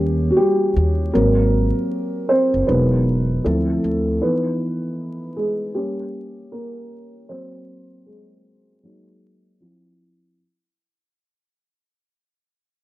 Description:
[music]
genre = lo-fi hip hop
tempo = 78 BPM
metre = 4/4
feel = swing 61% on 16ths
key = unclear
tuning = A4 = 444 Hz
[part]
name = felt-muted upright piano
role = accompaniment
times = 0.0-10.4 s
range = E3 to B#4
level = -19 LUFS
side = equal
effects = cassette tape, low-pass filter
[part]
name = upright bass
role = bass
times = 0.0-4.2 s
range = E1 to D#2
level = -20 LUFS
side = equal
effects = none
[sound]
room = light reverb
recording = dry, gritty hardware recording, vinyl crackle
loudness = -17 LUFS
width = side -16 dB against mid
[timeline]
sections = 0.0-10.4 A section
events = fade-out 0.0-10.4; felt piano solo 0.0-10.4; filter sweep on felt piano 0.0-10.4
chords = 0.0 D#7; 1.1 G#9; 2.7 Emaj9#11; 3.4 Dm9; 4.2 Emaj7; 5.8 Gdim; 7.3 G#9; 8.8 F#69; 9.6 Cadd11/F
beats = 0.37 | 1.14 1.91 2.68 3.45 | 4.22 4.99 5.75 6.52 | 7.29 8.06 8.83 9.60

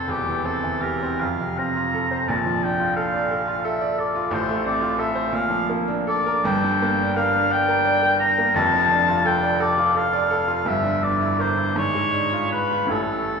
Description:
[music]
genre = classical, romantic duo for oboe and grand piano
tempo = 51-60 BPM (dotted quarters)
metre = 6/8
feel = rubato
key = D minor from 6.5 s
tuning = A4 = 439 Hz
[part]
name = warm oboe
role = melody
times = 0.0-13.4 s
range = G4 to Bb5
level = -21 LUFS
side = left 2 dB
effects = none
[part]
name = bright grand piano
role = accompaniment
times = 0.0-13.4 s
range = E1 to D5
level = -23 LUFS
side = right 2 dB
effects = none
[sound]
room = wet church reverb, RT60 3.2 s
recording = recorded in a church or concert hall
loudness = -19 LUFS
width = side -5 dB against mid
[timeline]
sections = 0.0-13.4 A section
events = none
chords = 0.1 C/E; 1.2 F; 2.3 Bbmaj7; 4.3 F/A; 5.3 Bbmaj7; 6.5 Gm; 8.6 Dm/F; 10.7 Em7b5/G; 11.8 G#dim7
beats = | 0.10 1.21 | 2.29 3.31 | 4.32 5.34 | 6.46 7.51 | 8.56 9.61 | 10.67 11.76 | 12.90

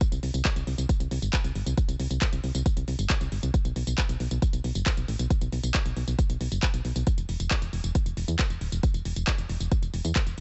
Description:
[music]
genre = uplifting trance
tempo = 136 BPM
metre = 4/4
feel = straight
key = unclear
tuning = A4 = 438 Hz
[part]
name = electronic kick drum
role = drums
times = 0.0-10.2 s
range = none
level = -28 LUFS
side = equal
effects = none
[part]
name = house drum kit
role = drums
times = 0.0-10.4 s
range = handclaps, hi-hat, tambourine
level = -35 LUFS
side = equal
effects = none
[part]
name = solid FM bass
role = bass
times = 0.1-10.4 s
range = D1 to E2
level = -31 LUFS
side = equal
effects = tube saturation, sidechain pumping
[sound]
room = little or no reverb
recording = nothing above 8.0 kHz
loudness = -27 LUFS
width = mono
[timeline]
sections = 0.0-10.4 A section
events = none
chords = none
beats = | 0.01 0.45 0.89 1.33 | 1.77 2.22 2.66 3.10 | 3.54 3.98 4.42 4.86 | 5.30 5.75 6.19 6.63 | 7.07 7.51 7.95 8.39 | 8.83 9.27 9.72 10.16

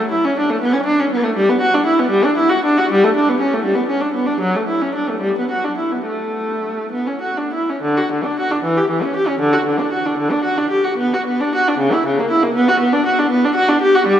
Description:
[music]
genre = classical, baroque-style suite movement for unaccompanied viola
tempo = 63-82 BPM (dotted quarters)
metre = 6/8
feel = rubato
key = D major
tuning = A4 = 440 Hz
[part]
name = warm viola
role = solo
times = 0.0-14.2 s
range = C#3 to G4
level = -14 LUFS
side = equal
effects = none
[sound]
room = wet cathedral reverb, RT60 6.2 s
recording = none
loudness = -15 LUFS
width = side -10 dB against mid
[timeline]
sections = 0.0-7.8 A section; 7.8-14.2 B section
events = none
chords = none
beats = 0.59 | 1.33 2.08 | 2.87 3.63 | 4.39 5.19 | 6.03 6.89 | 7.79 8.61 | 9.39 10.16 | 10.99 11.77 | 12.53 13.30 | 14.10

